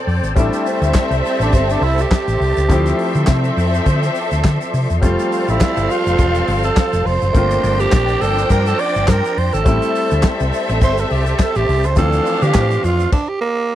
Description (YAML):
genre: disco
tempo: 103 BPM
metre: 4/4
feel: swing 56% on 16ths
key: unclear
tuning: A4 = 442 Hz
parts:
  - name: rich studio string section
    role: second line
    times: 0.0-13.1 s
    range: C4 to G5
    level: -22 LUFS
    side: left 2 dB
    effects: none
  - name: clear baby grand piano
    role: accompaniment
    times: 0.0-13.2 s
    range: Bb2 to A4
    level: -24 LUFS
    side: left 4 dB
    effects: none
  - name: tonewheel organ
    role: sustained chords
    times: 0.0-13.1 s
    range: F3 to C6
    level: -27 LUFS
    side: equal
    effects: overdrive, chorus vibrato, slow rotary speaker
  - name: hollow-body short-scale fingered electric bass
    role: bass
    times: 0.1-13.1 s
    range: E1 to D3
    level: -18 LUFS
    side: equal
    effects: none
  - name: warm soul drum kit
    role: drums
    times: 0.1-13.3 s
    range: crash cymbal, handclaps, hi-hat, kick drum, snare drum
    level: -15 LUFS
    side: equal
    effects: none
  - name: tube shaker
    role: percussion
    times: 0.2-13.1 s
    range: none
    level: -39 LUFS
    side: right 29 dB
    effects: none
  - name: growling tenor saxophone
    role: melody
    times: 0.4-13.8 s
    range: Bb3 to D5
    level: -19 LUFS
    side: right 4 dB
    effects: none
room: little or no reverb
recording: none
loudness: -14 LUFS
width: side -12 dB against mid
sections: 0.0-13.8 A section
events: tenor saxophone solo 0.0-13.8; stop 13.1-13.8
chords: 0.4 Am7; 2.7 Dm7; 5.0 F; 7.4 Gm11; 9.7 Am7; 12.0 Dm7; 13.1 N.C.